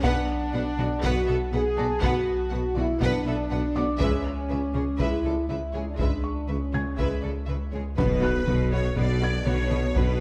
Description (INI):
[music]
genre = cinematic, hybrid orchestral and electronic film score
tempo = 121 BPM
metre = 4/4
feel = straight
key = B dorian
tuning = A4 = 442 Hz
[part]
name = warm symphonic violin section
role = melody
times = 0.0-10.0 s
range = B4 to F#5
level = -42 LUFS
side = equal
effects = none
[part]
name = rich symphonic violin section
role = second line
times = 0.0-10.2 s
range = F#4 to D5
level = -37 LUFS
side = equal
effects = none
[part]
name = rich symphonic viola section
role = accompaniment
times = 0.0-10.0 s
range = G#3 to F#4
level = -38 LUFS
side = equal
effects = none
[part]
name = warm French horn section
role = sustained chords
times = 0.0-10.2 s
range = B3 to G#4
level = -32 LUFS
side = equal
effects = none
[part]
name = clear symphonic cello section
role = bass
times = 0.0-10.2 s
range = B2 to C#3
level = -36 LUFS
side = equal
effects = none
[part]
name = clear symphonic double bass section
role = bass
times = 0.0-10.2 s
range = B1 to C#2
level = -35 LUFS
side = equal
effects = none
[part]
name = mellow tuba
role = bass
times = 0.0-10.2 s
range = B1 to C#2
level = -36 LUFS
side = equal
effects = none
[part]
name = saturated sub bass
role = bass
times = 0.0-10.2 s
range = B1 to C#2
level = -34 LUFS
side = equal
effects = none
[part]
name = solo taiko drums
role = drums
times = 0.0-10.2 s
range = none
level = -32 LUFS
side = equal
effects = none
[part]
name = felt-muted upright piano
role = texture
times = 0.0-10.2 s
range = D5 to G#6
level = -40 LUFS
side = equal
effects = none
[part]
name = pure sine lead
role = melody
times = 8.0-10.2 s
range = B4 to D5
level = -36 LUFS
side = equal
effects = chorus, digital delay
[part]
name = impact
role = sound effects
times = 8.0-10.0 s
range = none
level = -38 LUFS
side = equal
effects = none
[sound]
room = moderate scoring stage reverb, RT60 1.6 s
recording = none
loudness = -26 LUFS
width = mono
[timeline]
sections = 0.0-8.0 A section; 8.0-10.2 B section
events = impact 8.0-10.0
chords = 0.0 Bm; 4.0 C#m7; 8.0 Bm